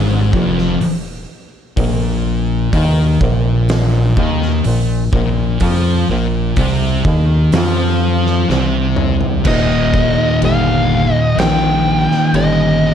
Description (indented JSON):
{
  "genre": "stoner and doom metal",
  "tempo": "62 BPM",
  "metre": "4/4",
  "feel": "straight",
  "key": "unclear",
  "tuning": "A4 = 440 Hz",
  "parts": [
    { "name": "thick fuzz guitar", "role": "riff", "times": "0.0-12.9 s", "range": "Eb2 to F3", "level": "-17 LUFS", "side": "left 7 dB", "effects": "distortion" },
    { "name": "thick fuzz guitar", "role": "riff", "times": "0.0-12.9 s", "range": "Eb2 to F3", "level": "-18 LUFS", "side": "right 7 dB", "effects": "distortion" },
    { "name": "growling FM bass", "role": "bass", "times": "0.0-12.9 s", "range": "Eb1 to F2", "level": "-18 LUFS", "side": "equal", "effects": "tube saturation" },
    { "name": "oversized low-tuned drum kit", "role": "drums", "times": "0.3-12.6 s", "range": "crash cymbal, hi-hat, kick drum, snare drum, toms", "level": "-20 LUFS", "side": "equal", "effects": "none" },
    { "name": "fuzz lead guitar", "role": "melody", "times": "9.5-12.9 s", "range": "Eb5 to G5", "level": "-17 LUFS", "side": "right 1 dB", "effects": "distortion, slapback echo" }
  ],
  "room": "light reverb, small room ambience",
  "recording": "dark, warm production",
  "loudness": "-12 LUFS",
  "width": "side -8 dB against mid",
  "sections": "0.0-9.5 A section; 9.5-12.9 B section",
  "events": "drum fill 8.5-9.5",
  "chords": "0.0 Ebsus24; 1.8 Bb5; 9.5 Eb",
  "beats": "0.81 | 1.78 2.74 3.70 4.66 | 5.62 6.58 7.54 8.50 | 9.46 10.42 11.38 12.34"
}